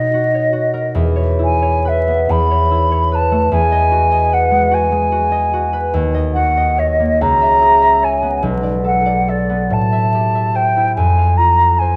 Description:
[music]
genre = classical, impressionist duo for flute and harp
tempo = 43-50 BPM (dotted quarters)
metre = 6/8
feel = rubato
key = unclear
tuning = A4 = 440 Hz
[part]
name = mellow hollow silver concert flute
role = melody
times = 0.0-12.0 s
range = D5 to B5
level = -17 LUFS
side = equal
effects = none
[part]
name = concert harp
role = accompaniment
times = 0.0-12.0 s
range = Cb2 to F5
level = -18 LUFS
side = equal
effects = none
[sound]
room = light reverb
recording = close, detailed microphones, vinyl crackle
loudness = -15 LUFS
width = mono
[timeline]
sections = 0.0-12.0 A section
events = none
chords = 0.0 D#m7/B; 1.0 E5; 2.3 Aadd9/E; 3.5 G#m7/E; 5.9 Ebm7; 7.2 Dbm7; 8.4 Cbm7; 9.7 Am7; 11.0 F5

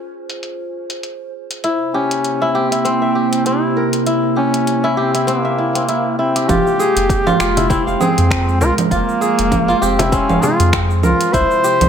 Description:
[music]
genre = organic downtempo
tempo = 99 BPM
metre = 4/4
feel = swing 56% on 16ths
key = F harmonic minor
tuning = A4 = 440 Hz
[part]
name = warbly tape-like pad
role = sustained chords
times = 0.0-11.9 s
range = C3 to C5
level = -22 LUFS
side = right 2 dB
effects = chorus, built-in reverb, sidechain pumping
[part]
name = deep house drum kit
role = drums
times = 0.3-11.9 s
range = cabasa, congas, finger snaps, hi-hat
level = -21 LUFS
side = right 3 dB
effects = overdrive, low-pass filter on hats, low-pass filter on perc, low-pass filter on snare, low-pass filter on room
[part]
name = kora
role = arpeggios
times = 1.6-11.9 s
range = C4 to F5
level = -19 LUFS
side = left 1 dB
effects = ping-pong delay
[part]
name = mellow duduk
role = melody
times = 1.9-11.9 s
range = Bb3 to C5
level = -18 LUFS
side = equal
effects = digital delay
[part]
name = round analog bass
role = bass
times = 6.5-11.9 s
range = F1 to F2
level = -18 LUFS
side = equal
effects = sidechain pumping
[part]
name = electronic kick drum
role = drums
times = 6.5-11.5 s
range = none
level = -21 LUFS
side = equal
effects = overdrive
[part]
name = frame drum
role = percussion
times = 7.6-10.6 s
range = none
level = -22 LUFS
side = left 3 dB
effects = none
[sound]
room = moderate echo chamber reverb, RT60 2.0 s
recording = none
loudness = -13 LUFS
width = side -8 dB against mid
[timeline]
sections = 0.0-6.5 A section; 6.5-11.9 B section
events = none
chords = 0.0 Fm; 1.6 C7; 6.5 Fm; 11.3 C7

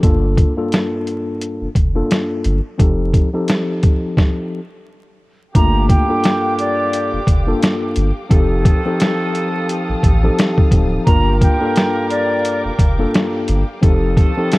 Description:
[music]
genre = hip hop, boom-bap hip-hop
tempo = 87 BPM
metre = 4/4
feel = swing 57% on 16ths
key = G minor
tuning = A4 = 441 Hz
[part]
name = mellow tine electric piano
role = accompaniment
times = 0.0-14.6 s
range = G2 to Bb4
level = -20 LUFS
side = left 2 dB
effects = medium stereo tremolo, high-pass filter, low-pass filter
[part]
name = soft dub sub bass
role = bass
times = 0.0-14.2 s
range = D1 to A1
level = -18 LUFS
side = equal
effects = none
[part]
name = boom bap sampler-style drum kit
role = drums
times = 0.0-14.6 s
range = hi-hat, kick drum, snare drum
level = -14 LUFS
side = equal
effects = none
[part]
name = warm horn section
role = stabs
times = 5.5-14.6 s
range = D3 to Bb4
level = -25 LUFS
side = right 3 dB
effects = high-pass filter, low-pass filter, tape echo
[part]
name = hollow concert flute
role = melody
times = 5.6-12.6 s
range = D5 to Bb5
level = -21 LUFS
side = equal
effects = high-pass filter, low-pass filter, tape echo
[part]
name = warm studio string section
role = sustained chords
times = 5.6-14.6 s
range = G4 to Eb6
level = -31 LUFS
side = left 1 dB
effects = high-pass filter, low-pass filter
[sound]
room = little or no reverb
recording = worn, warbling old tape, cassette tape, vinyl crackle, warbly pitch drift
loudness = -14 LUFS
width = side -20 dB against mid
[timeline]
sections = 0.0-5.6 A section; 5.6-14.6 B section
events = stop 4.2-5.6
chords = 0.0 Gm7; 2.8 F9; 5.6 Gm7; 8.3 F9; 11.1 Gm7; 13.8 F9

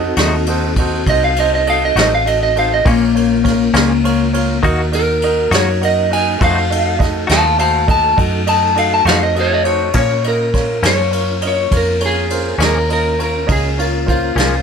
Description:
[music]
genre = slow blues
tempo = 68 BPM (dotted quarters)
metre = 12/8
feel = straight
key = Bb harmonic minor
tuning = A4 = 440 Hz
[part]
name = bright upright piano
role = accompaniment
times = 0.0-14.6 s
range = Db4 to Gb5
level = -23 LUFS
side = right 7 dB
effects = none
[part]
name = mellow tonewheel organ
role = sustained chords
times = 0.0-14.6 s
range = A3 to Bb4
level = -25 LUFS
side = left 2 dB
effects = chorus vibrato, wide subtle chorus
[part]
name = vintage muted fingered electric bass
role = bass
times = 0.0-14.6 s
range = A1 to Bb2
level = -19 LUFS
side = equal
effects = none
[part]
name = direct-recorded clean electric guitar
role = accompaniment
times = 0.2-14.6 s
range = Bb2 to Gb4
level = -20 LUFS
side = left 6 dB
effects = tremolo
[part]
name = vintage brush drum kit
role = drums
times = 0.2-14.5 s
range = crash cymbal, kick drum, ride cymbal, snare drum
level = -19 LUFS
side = equal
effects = none
[part]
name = electric slide guitar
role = melody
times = 1.1-14.6 s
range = Bb3 to A5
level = -15 LUFS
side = left 2 dB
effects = none
[sound]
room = light reverb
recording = none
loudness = -12 LUFS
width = side -6 dB against mid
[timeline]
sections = 0.0-9.9 A section; 9.9-14.6 B section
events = electric slide guitar solo 0.0-9.9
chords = 0.0 F7b9; 2.8 Bbm; 4.6 Ebm; 6.4 F7b9; 9.9 Bbm

